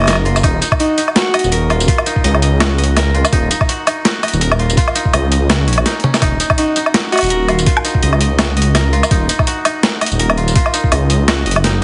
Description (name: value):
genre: half-time drum and bass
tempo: 166 BPM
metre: 4/4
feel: swing 56% on 16ths, half-time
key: Eb minor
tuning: A4 = 440 Hz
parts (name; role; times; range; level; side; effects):
- koto; arpeggios; 0.0-11.8 s; Db4 to Eb5; -23 LUFS; equal; dub echo
- dark detuned saw bass; bass; 0.0-11.8 s; Eb1 to Db2; -17 LUFS; equal; none
- boom bap sampler-style drum kit; drums; 0.0-11.7 s; hi-hat, snare drum, tambourine, toms, woodblock; -18 LUFS; equal; studio reverb
- electronic kick drum; drums; 0.4-10.9 s; none; -18 LUFS; equal; studio reverb
- breathy alto saxophone; melody; 0.8-1.5, 6.6-7.6 s; Eb4 to Gb4; -21 LUFS; equal; tape echo
room: light reverb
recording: heavily compressed radio sound, nothing above 10.5 kHz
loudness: -14 LUFS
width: mono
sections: 0.0-11.8 A section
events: drum fill 6.0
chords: 0.0 Ebm